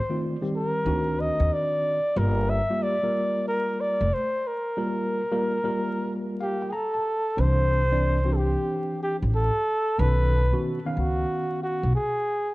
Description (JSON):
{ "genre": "hip hop", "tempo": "92 BPM", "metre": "4/4", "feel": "swing 66% on 16ths", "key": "unclear", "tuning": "A4 = 440 Hz", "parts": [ { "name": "mellow flugelhorn", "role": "melody", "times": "0.0-12.5 s", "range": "F#4 to E5", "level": "-26 LUFS", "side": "equal", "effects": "tape echo" }, { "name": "tine electric piano", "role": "accompaniment", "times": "0.1-11.9 s", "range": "Eb3 to Bb5", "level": "-29 LUFS", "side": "equal", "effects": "overdrive, fast stereo tremolo" }, { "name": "upright bass", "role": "bass", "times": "0.9-11.9 s", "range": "F1 to Eb2", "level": "-24 LUFS", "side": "equal", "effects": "none" } ], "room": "light reverb, studio ambience", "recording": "worn, warbling old tape, cassette tape, vinyl crackle, warbly pitch drift, nothing above 10.8 kHz", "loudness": "-23 LUFS", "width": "side -20 dB against mid", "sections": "0.0-7.4 A section; 7.4-12.5 B section", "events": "break 4.8-7.4; tine electric piano fill 6.1-7.4", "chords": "0.0 Am7b5; 0.9 D7b9; 2.2 Gm7; 7.4 Cadd9; 10.0 B9", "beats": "0.21 0.86 1.51 | 2.17 2.82 3.47 4.12 | 4.77 5.43 6.08 6.73 | 7.38 8.03 8.69 9.34 | 9.99 10.64 11.29 11.95" }